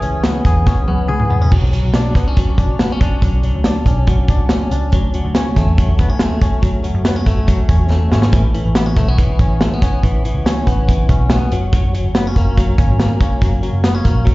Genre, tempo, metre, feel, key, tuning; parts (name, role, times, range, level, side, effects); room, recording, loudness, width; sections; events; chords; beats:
jangly indie pop; 141 BPM; 4/4; straight; B dorian; A4 = 439 Hz
direct-recorded clean electric guitar; arpeggios; 0.0-14.3 s; E3 to G#4; -21 LUFS; left 2 dB; vibrato effect, analog delay, slapback echo
vintage muted picked electric bass; bass; 0.0-14.3 s; F#1 to F#2; -16 LUFS; equal
modern studio drum kit; drums; 0.0-14.3 s; crash cymbal, hi-hat, kick drum, snare drum, toms; -15 LUFS; equal
small room ambience; live gig heard through the venue's PA, club reverb, nothing above 7.6 kHz; -12 LUFS; side -20 dB against mid
0.0-1.5 A section; 1.5-14.3 B section
drum fill 0.7-1.5, 7.9-8.3
0.0 C#m7; 1.5 Bmadd9; 4.9 Dmaj7; 8.3 Aadd9; 11.5 F#
0.23 0.66 1.09 | 1.52 1.94 2.37 2.80 | 3.23 3.65 4.08 4.50 | 4.93 5.36 5.78 6.21 | 6.63 7.06 7.49 7.91 | 8.34 8.76 9.18 9.61 | 10.03 10.46 10.88 11.30 | 11.73 12.15 12.57 13.00 | 13.42 13.85 14.27